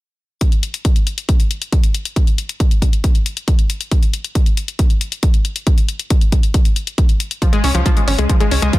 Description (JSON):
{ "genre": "uplifting trance", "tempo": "137 BPM", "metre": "4/4", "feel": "straight", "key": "unclear", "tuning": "A4 = 440 Hz", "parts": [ { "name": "electronic hi-hat", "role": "drums", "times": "0.4-8.8 s", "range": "none", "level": "-24 LUFS", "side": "left 6 dB", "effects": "none" }, { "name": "electronic kick drum", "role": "drums", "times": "0.4-8.8 s", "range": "none", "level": "-14 LUFS", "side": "equal", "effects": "none" }, { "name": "analog pluck", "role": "arpeggios", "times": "7.4-8.8 s", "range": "F3 to Db4", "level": "-18 LUFS", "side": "left 2 dB", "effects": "chorus, sidechain pumping, tape echo" }, { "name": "tight sequencer bass", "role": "bass", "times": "7.6-8.7 s", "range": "Ab1 to Db2", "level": "-16 LUFS", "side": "equal", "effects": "sidechain pumping" } ], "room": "digital ambience", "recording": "dense, heavily limited modern master", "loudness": "-14 LUFS", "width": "side -18 dB against mid", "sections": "0.4-8.8 A section", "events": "none", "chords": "0.4 N.C.; 7.4 Db" }